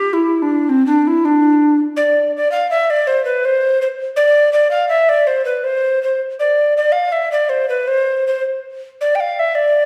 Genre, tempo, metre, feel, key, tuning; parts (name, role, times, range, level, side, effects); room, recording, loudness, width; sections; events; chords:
medieval; 108 BPM (dotted quarters); 6/8; straight; D dorian; A4 = 444 Hz
breathy mellow tenor recorder; solo; 0.0-9.9 s; C4 to G5; -16 LUFS; equal
wet recital hall reverb, RT60 1.6 s; heard from further back in the room; -16 LUFS; mono
0.0-1.8 A section; 1.8-9.9 B section